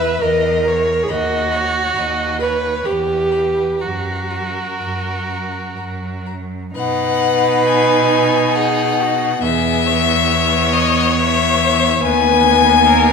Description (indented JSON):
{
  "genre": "classical, slow romantic movement for string quartet",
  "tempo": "59-72 BPM",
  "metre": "3/4",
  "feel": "rubato",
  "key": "B major",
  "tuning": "A4 = 441 Hz",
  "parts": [
    { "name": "rich violin", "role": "second line", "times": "0.0-13.1 s", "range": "F#4 to E5", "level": "-20 LUFS", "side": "left 2 dB", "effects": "none" },
    { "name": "rich viola", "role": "accompaniment", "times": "0.0-13.1 s", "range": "B3 to B4", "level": "-19 LUFS", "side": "right 2 dB", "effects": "none" },
    { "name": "clear cello", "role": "bass", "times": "0.0-13.1 s", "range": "D#2 to B2", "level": "-22 LUFS", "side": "right 3 dB", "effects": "none" },
    { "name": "rich violin", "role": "melody", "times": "0.2-13.1 s", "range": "D#5 to B5", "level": "-16 LUFS", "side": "left 10 dB", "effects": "none" }
  ],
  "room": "wet concert hall reverb, RT60 2.2 s",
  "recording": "minimal, uncompressed stereo recording",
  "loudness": "-14 LUFS",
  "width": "side -5 dB against mid",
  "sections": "0.0-6.8 A section; 6.8-13.1 B section",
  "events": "none",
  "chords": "0.0 C#m13/E; 1.1 B/D#; 2.9 Em; 3.8 F#; 6.8 B; 9.4 E5; 12.0 B/D#",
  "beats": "0.22 | 1.10 1.97 2.88 | 3.83 4.83 5.78 | 6.75 7.66 8.55 | 9.42 10.30 11.16 | 12.00 12.85"
}